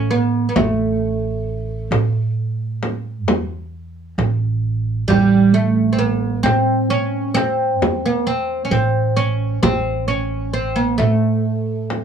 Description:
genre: Arabic maqam ensemble.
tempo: 132 BPM (eighths).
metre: 10/8.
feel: straight.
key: A maqam saba.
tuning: A4 = 439 Hz.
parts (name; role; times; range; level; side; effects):
oud; melody; 0.0-12.0 s; G3 to C#4; -18 LUFS; right 2 dB; none.
upright bass; bass; 0.0-12.0 s; A1 to A2; -21 LUFS; right 3 dB; none.
frame drum; percussion; 0.6-12.0 s; none; -20 LUFS; left 1 dB; none.
room: light reverb.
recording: none.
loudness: -16 LUFS.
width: side -7 dB against mid.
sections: 0.0-12.0 A section.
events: none.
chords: none.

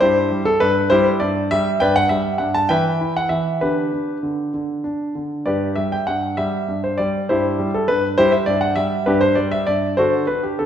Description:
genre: classical-period piano sonatina.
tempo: 66 BPM (dotted quarters).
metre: 6/8.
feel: straight.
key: G major.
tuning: A4 = 440 Hz.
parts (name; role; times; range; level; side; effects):
warm concert grand piano; solo; 0.0-10.7 s; G2 to A5; -17 LUFS; equal; none.
room: wet recital hall reverb, RT60 1.4 s.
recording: heard from further back in the room.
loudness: -17 LUFS.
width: side -9 dB against mid.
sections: 0.0-10.7 A section.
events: none.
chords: 0.0 G6; 1.8 G; 2.7 Em; 3.6 G/D; 4.5 N.C.; 5.5 G; 7.3 G5; 10.0 D.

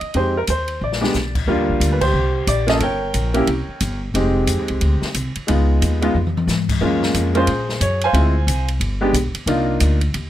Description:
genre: jazz piano trio.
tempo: 180 BPM.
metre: 4/4.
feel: swing 62% on 8ths.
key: Eb major.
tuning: A4 = 439 Hz.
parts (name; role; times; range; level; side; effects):
clear concert grand piano; melody; 0.0-10.0 s; G3 to Ab5; -19 LUFS; equal; none.
upright bass; bass; 0.0-10.3 s; F1 to Ab2; -20 LUFS; equal; none.
open jazz drum kit; drums; 0.0-10.2 s; crash cymbal, hi-hat, kick drum, ride cymbal, snare drum, toms; -25 LUFS; left 2 dB; none.
room: little or no reverb.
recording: close, detailed microphones.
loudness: -16 LUFS.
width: side -12 dB against mid.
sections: 0.0-1.5 A section; 1.5-10.3 B section.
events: drum fill 0.8-1.1, 6.1-6.5; band accent 2.0.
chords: 0.1 Fm7; 0.8 Bb(b9); 1.5 Ebmaj7 (rootless); 2.8 Gdim; 3.5 C5; 4.1 Fm9; 5.5 Db9; 6.8 Gbmaj9; 8.1 Dm7b5; 8.8 G; 9.5 Cm11.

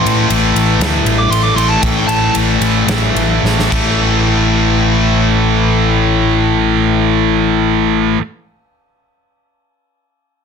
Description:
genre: hard rock.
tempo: 104-122 BPM.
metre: 4/4.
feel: straight.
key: unclear.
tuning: A4 = 441 Hz.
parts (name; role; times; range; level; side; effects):
dark smooth lead guitar; melody; 0.0-2.3 s; G5 to D6; -19 LUFS; right 4 dB; overdrive, digital delay.
distorted electric guitar; riff; 0.0-8.2 s; A2 to A3; -15 LUFS; left 13 dB; overdrive.
scooped high-gain guitar; riff; 0.0-8.2 s; A2 to A3; -16 LUFS; right 14 dB; distortion.
picked electric bass; bass; 0.0-8.2 s; A1 to A2; -16 LUFS; right 1 dB; none.
big rock drum kit; drums; 0.1-3.9 s; crash cymbal, kick drum, ride cymbal, snare drum; -20 LUFS; equal; none.
room: light reverb.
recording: dense, heavily limited modern master.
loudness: -11 LUFS.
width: side -6 dB against mid.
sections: 0.0-4.0 A section; 4.0-8.6 B section.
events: slowing down 0.0-4.0; lead electric guitar solo 0.0-4.0; drum fill 3.4-4.0.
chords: 0.0 Am; 3.7 A5.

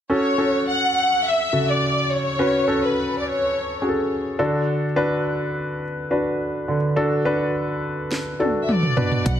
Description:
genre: piano-driven pop.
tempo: 105 BPM.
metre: 4/4.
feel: straight.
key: unclear.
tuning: A4 = 441 Hz.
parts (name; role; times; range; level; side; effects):
warm studio violin section; melody; 0.1-3.8, 8.6-9.4 s; B4 to F#5; -22 LUFS; left 1 dB; digital delay.
warm grand piano; accompaniment; 0.1-9.4 s; B2 to B4; -21 LUFS; equal; none.
house drum kit; drums; 8.1-9.4 s; hi-hat, kick drum, snare drum, toms; -22 LUFS; equal; overdrive.
vintage muted fingered electric bass; bass; 9.3-9.4 s; B1; -21 LUFS; right 1 dB; none.
room: light reverb, digital ambience.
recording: none.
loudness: -19 LUFS.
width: side -10 dB against mid.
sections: 0.1-9.4 A section.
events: drum fill 8.1-9.3.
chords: 0.1 F#m; 4.4 D.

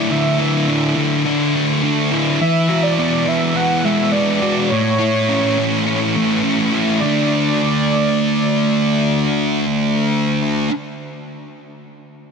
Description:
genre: rock.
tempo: 104 BPM.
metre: 4/4.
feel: straight.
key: D lydian.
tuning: A4 = 440 Hz.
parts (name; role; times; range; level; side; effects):
warm velvety synth lead; melody; 0.0-10.1 s; C#5 to F#5; -22 LUFS; right 2 dB; chorus, tape echo.
thick fuzz guitar; riff; 0.0-10.7 s; A2 to F#4; -16 LUFS; equal; distortion, wide subtle chorus.
room: light reverb.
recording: dense, heavily limited modern master.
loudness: -14 LUFS.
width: side -5 dB against mid.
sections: 0.0-7.0 A section; 7.0-9.3 B section.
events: none.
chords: 0.0 Dsus2; 2.4 Eadd9; 4.7 A; 7.0 D5.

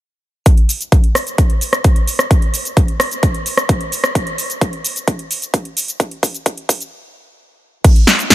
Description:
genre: EDM.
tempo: 130 BPM.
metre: 4/4.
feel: straight.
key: none.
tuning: none.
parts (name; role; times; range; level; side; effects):
big-room dance drum kit; drums; 0.5-8.3 s; cabasa, crash cymbal, hi-hat, rim click, snare drum; -16 LUFS; equal; none.
electronic kick drum; drums; 0.5-8.3 s; none; -12 LUFS; equal; none.
room: little or no reverb.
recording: high-pass filter.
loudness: -13 LUFS.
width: side -15 dB against mid.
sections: 0.5-7.8 A section.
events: build-up 0.5-7.8; filter sweep 0.5-7.8; drum fill 4.2-6.9; stop 6.9-7.8.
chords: none.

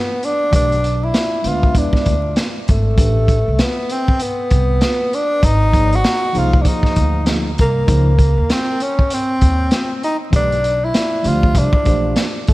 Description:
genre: hip hop, jazz-hop.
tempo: 98 BPM.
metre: 4/4.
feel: swing 61% on 16ths.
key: unclear.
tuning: A4 = 440 Hz.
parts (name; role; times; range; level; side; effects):
breathy tenor saxophone; melody; 0.0-12.5 s; A3 to F#4; -19 LUFS; equal; analog delay.
crunchy breakbeat drum kit; drums; 0.2-12.5 s; hi-hat, kick drum, snare drum; -17 LUFS; equal; vintage 12-bit sampler grit.
mellow tine electric piano; accompaniment; 0.5-12.2 s; E3 to E5; -25 LUFS; equal; medium stereo tremolo.
upright bass; bass; 0.5-12.5 s; G1 to E2; -17 LUFS; equal; none.
room: light reverb, small room ambience.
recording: vinyl crackle.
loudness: -13 LUFS.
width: side -18 dB against mid.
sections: 0.0-12.5 A section.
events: none.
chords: 0.0 E7(no3) (rootless); 0.5 G13b9/B; 1.8 E7; 3.0 Am11; 5.4 G#; 7.9 C#maj9; 10.3 Bm7b5; 11.6 C7.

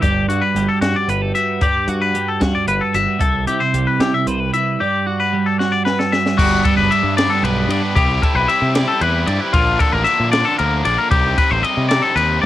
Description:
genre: math rock and midwest emo.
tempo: 76 BPM (dotted quarters).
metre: 6/8.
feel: straight.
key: G major.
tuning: A4 = 440 Hz.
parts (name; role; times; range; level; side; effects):
twelve-string electric guitar; accompaniment; 0.0-8.0 s; G2 to E5; -20 LUFS; right 5 dB; lush chorus, cassette tape.
twangy electric guitar; arpeggios; 0.0-12.5 s; F4 to E5; -18 LUFS; left 4 dB; cassette tape.
growling fingered electric bass; bass; 0.0-12.5 s; F#1 to C3; -21 LUFS; equal; overdrive.
compact cocktail drum kit; drums; 0.0-12.5 s; crash cymbal, hi-hat, kick drum, ride cymbal, snare drum, toms; -21 LUFS; equal; none.
cranked stack guitar; riff; 6.4-12.5 s; C3 to G4; -22 LUFS; right 2 dB; overdrive, cassette tape.
room: little or no reverb.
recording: home recording on cassette.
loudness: -14 LUFS.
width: side -13 dB against mid.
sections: 0.0-6.4 A section; 6.4-12.5 B section.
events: drum fill 5.6-6.4.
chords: 0.0 Gmaj9; 3.2 Cmaj7; 4.8 Gmaj7; 8.0 Cmaj9; 9.5 Bbmaj7; 11.1 Cm.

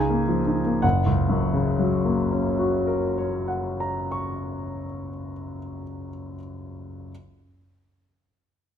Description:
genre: classical, romantic character piece for solo piano.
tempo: 59 BPM (dotted quarters).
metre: 6/8.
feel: rubato.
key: F# major.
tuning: A4 = 439 Hz.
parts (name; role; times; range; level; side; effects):
warm grand piano; solo; 0.0-7.1 s; F#1 to C#6; -23 LUFS; left 1 dB; none.
room: moderate recital hall reverb, RT60 1.6 s.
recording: close, detailed microphones.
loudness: -22 LUFS.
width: side -8 dB against mid.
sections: 0.8-4.9 A section.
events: none.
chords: 0.0 C#69; 0.8 F#.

